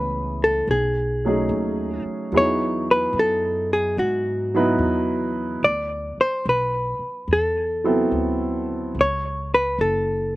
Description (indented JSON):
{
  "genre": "jazz ballad",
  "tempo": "73 BPM",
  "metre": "4/4",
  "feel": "swing 67% on 8ths",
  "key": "unclear",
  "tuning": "A4 = 440 Hz",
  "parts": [
    { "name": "hollow-body jazz guitar", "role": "melody", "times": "0.0-10.4 s", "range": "F#4 to D5", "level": "-21 LUFS", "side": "equal", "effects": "none" },
    { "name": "warm baby grand piano", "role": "accompaniment", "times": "0.0-9.0 s", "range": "E3 to B4", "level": "-23 LUFS", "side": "right 1 dB", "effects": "none" },
    { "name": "upright bass", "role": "bass", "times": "0.0-10.4 s", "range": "F#1 to G#2", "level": "-29 LUFS", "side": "equal", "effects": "none" }
  ],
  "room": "little or no reverb",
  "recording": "recorded outdoors, with no room sound",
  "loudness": "-20 LUFS",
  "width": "side -18 dB against mid",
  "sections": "0.0-10.4 A section",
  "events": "none",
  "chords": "0.0 F#m11 (rootless); 0.7 B13; 2.3 Emaj9; 5.6 D13; 8.9 N.C."
}